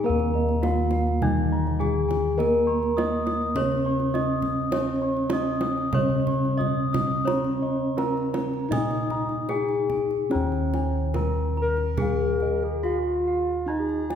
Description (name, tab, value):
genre	Javanese gamelan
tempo	71-103 BPM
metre	4/4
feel	straight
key	Eb slendro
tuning	A4 = 440 Hz
part	gamelan-type bronze metallophone	melody	0.0-14.2 s	Db4-45c to Eb5	-28 LUFS	left 1 dB	none
part	gamelan-type bronze metallophone	accompaniment	0.0-10.3 s	Eb3 to Eb4	-28 LUFS	right 1 dB	none
part	gamelan-type bronze metallophone	arpeggios	0.0-14.2 s	Db5-45c to Eb6	-33 LUFS	equal	none
part	gamelan-type bossed gongs	bass	0.0-14.2 s	Eb2 to Db5-45c	-27 LUFS	left 1 dB	none
part	gamelan-type bossed gongs	arpeggios	0.1-14.2 s	Eb5 to Db6-45c	-35 LUFS	left 2 dB	none
part	kendang	percussion	0.2-14.2 s	none	-31 LUFS	right 2 dB	none
part	pure sine lead	second line	11.6-14.2 s	F4+30c to Bb4+25c	-28 LUFS	left 1 dB	chorus
room	wet scoring stage reverb, RT60 2.1 s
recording	heard from further back in the room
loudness	-22 LUFS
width	side -8 dB against mid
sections	0.0-10.3 A section; 10.3-14.2 B section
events	none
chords	none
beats	| 0.06 0.64 1.23 1.81 | 2.40 2.98 3.56 4.15 | 4.73 5.33 5.95 6.59 | 7.27 7.97 8.71 9.49 | 10.31 11.15 11.99 12.83 | 13.68